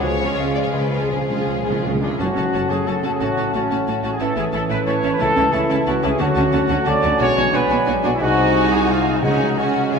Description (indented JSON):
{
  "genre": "classical, dramatic, fast romantic movement for symphony orchestra",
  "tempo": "163-182 BPM",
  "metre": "3/4",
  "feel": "straight",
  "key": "F# minor",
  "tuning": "A4 = 440 Hz",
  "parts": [
    { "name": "rich studio violin section", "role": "melody", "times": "0.0-10.0 s", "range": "G#4 to A5", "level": "-30 LUFS", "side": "left 5 dB", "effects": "none" },
    { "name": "concert flute", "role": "second line", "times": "0.0-10.0 s", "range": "E#5 to A5", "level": "-28 LUFS", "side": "left 1 dB", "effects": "none" },
    { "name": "rich studio violin section", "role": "second line", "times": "0.0-10.0 s", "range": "E4 to G#4", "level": "-29 LUFS", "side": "left 3 dB", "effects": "none" },
    { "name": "dark bassoon", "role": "accompaniment", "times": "0.0-10.0 s", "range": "E3 to G#3", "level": "-25 LUFS", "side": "right 2 dB", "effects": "none" },
    { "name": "rich symphonic viola section", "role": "accompaniment", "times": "0.0-10.0 s", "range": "G#3 to D#4", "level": "-27 LUFS", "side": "right 4 dB", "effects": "none" },
    { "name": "mellow French horn section", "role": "sustained chords", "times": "0.0-10.0 s", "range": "E#3 to G#4", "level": "-26 LUFS", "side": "left 2 dB", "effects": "none" },
    { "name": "concert harp", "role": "arpeggios", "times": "0.0-10.0 s", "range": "F#2 to A5", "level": "-27 LUFS", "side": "left 6 dB", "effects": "none" },
    { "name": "rich symphonic cello section", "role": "bass", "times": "0.0-10.0 s", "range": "F#2 to D3", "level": "-28 LUFS", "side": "right 3 dB", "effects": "none" },
    { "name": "rich symphonic double bass section", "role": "bass", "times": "0.0-10.0 s", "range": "F#1 to D2", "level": "-27 LUFS", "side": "right 3 dB", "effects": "none" },
    { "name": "timpani", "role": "percussion", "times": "0.0-2.7, 5.2-5.7, 9.2-9.7 s", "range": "F#2 to C#3", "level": "-28 LUFS", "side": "equal", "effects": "none" },
    { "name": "dark trumpet section", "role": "stabs", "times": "2.0-10.0 s", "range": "C#4 to D5", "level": "-21 LUFS", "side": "right 1 dB", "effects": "none" }
  ],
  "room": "wet concert hall reverb, RT60 2.1 s",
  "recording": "none",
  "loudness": "-16 LUFS",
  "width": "side -5 dB against mid",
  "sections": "0.0-2.2 A section; 2.2-10.0 B section",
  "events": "timpani fill 0.0-2.2",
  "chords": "0.0 C#; 2.2 F#m; 3.2 F#m/A; 4.2 A; 5.2 A/C#; 6.2 Dmaj7; 7.2 G#m7b5/B; 8.2 G#7/B#; 9.2 C#sus4",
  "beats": "| 0.02 0.38 0.73 | 1.09 1.46 1.83 | 2.19 2.53 2.87 | 3.20 3.54 3.87 | 4.20 4.54 4.87 | 5.20 5.53 5.87 | 6.20 6.53 6.86 | 7.20 7.53 7.87 | 8.20 8.54 8.88 | 9.23 9.57 9.92"
}